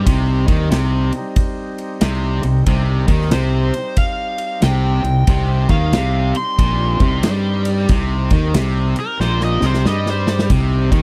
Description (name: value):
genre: blues rock power trio and southern rock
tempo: 92 BPM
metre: 4/4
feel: swing 64% on 8ths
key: C minor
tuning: A4 = 439 Hz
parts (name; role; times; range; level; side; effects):
- overdriven tonewheel organ; sustained chords; 0.0-11.0 s; G3 to G4; -32 LUFS; equal; slow rotary speaker
- overdriven electric guitar; riff; 0.0-11.0 s; Bb2 to G3; -24 LUFS; equal; none
- fuzz fingered electric bass; bass; 0.0-11.0 s; Bb1 to G2; -20 LUFS; equal; overdrive
- big rock drum kit; drums; 0.1-11.0 s; kick drum, ride cymbal, snare drum; -20 LUFS; equal; none
- overdriven slide guitar; melody; 3.3-10.4 s; Bb4 to C6; -25 LUFS; equal; slapback echo
room: little or no reverb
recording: dry, close 1970s-style studio recording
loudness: -17 LUFS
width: mono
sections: 0.0-11.0 A section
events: drum fill 9.2-10.5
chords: 0.0 Cm